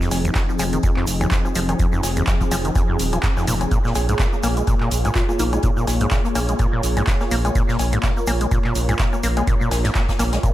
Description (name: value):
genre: acid house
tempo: 125 BPM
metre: 4/4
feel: swing 56% on 16ths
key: unclear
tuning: A4 = 442 Hz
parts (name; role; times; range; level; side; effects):
- warm analog pad; sustained chords; 0.0-10.5 s; F3 to Db5; -26 LUFS; equal; chorus, sidechain pumping
- deep acid bass; riff; 0.0-10.5 s; Eb2 to Bb3; -24 LUFS; equal; tube saturation, sidechain pumping, tape echo
- warm soul drum kit; drums; 0.0-10.5 s; hi-hat, snare drum; -36 LUFS; left 2 dB; sidechain pumping on hats, high-pass filter on hats, high-pass filter on snare, high-pass filter on room
- tube shaker; percussion; 0.0-10.5 s; none; -34 LUFS; right 4 dB; none
- round analog bass; bass; 0.1-10.4 s; Eb1 to Bb1; -22 LUFS; equal; sidechain pumping
- punchy analog drum machine; drums; 0.1-10.5 s; cowbell, handclaps, hi-hat; -27 LUFS; left 1 dB; none
- electronic kick drum; drums; 0.4-10.5 s; none; -21 LUFS; equal; none
- mallet-like synth pluck; melody; 4.0-5.6 s; Eb4 to Ab4; -29 LUFS; right 1 dB; chorus, phaser, diffuse ambient delay
room: light reverb, small room ambience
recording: none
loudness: -17 LUFS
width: side -14 dB against mid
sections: 0.0-10.5 A section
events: none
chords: 0.0 Fm7; 3.7 Bbm7